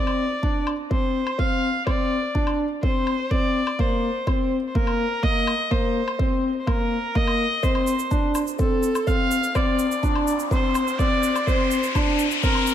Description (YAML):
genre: piano and strings electronica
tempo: 125 BPM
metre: 4/4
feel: straight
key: unclear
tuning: A4 = 441 Hz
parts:
  - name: warm viola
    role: melody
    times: 0.0-12.7 s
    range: A4 to F5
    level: -26 LUFS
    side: right 1 dB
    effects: tape echo
  - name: felt-muted upright piano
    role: riff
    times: 0.0-12.7 s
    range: Bb3 to D4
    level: -24 LUFS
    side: left 2 dB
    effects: tape echo
  - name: woodblock and shaker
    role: drums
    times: 0.1-12.7 s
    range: none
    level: -33 LUFS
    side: left 1 dB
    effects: none
  - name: electronic kick drum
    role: drums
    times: 0.4-12.5 s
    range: none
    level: -24 LUFS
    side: right 1 dB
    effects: overdrive
  - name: riser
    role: sound effects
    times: 8.6-12.7 s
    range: none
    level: -29 LUFS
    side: left 3 dB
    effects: none
room: moderate recital hall reverb, RT60 1.6 s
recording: none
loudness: -20 LUFS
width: side -10 dB against mid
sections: 0.0-12.7 A section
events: build-up 0.0-12.7; riser 8.6-12.7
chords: 0.0 N.C.; 3.8 Eb5; 7.6 D7(no3)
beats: 0.43 0.92 1.40 | 1.88 2.35 2.83 3.31 | 3.79 4.28 4.75 5.24 | 5.71 6.20 6.67 7.16 | 7.63 8.12 8.60 9.07 | 9.55 10.04 10.52 10.99 | 11.47 11.96 12.44